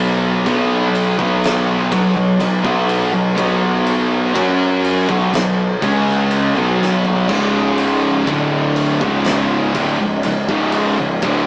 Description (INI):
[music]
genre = stoner and doom metal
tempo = 61 BPM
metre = 4/4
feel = straight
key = unclear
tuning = A4 = 440 Hz
[part]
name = thick fuzz guitar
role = riff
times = 0.0-11.5 s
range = C#2 to F#4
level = -20 LUFS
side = equal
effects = distortion
[part]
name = thick fuzz guitar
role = riff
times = 0.0-11.5 s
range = C#2 to F#4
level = -18 LUFS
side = equal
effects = distortion
[part]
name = tight distorted guitar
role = riff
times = 0.0-11.5 s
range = C#2 to F#4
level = -21 LUFS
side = equal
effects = distortion
[part]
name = fuzz picked electric bass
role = bass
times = 0.0-11.5 s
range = C#1 to F#2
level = -22 LUFS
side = equal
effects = overdrive
[part]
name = oversized low-tuned drum kit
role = drums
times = 0.5-11.5 s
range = crash cymbal, kick drum, ride cymbal, snare drum, toms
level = -22 LUFS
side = equal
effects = none
[sound]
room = moderate studio reverb, RT60 0.5 s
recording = rough rehearsal-room recording, small speaker sound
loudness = -13 LUFS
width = side -30 dB against mid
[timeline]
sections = 0.0-11.5 A section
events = drum fill 6.8-7.3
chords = 0.0 B5; 7.3 C#5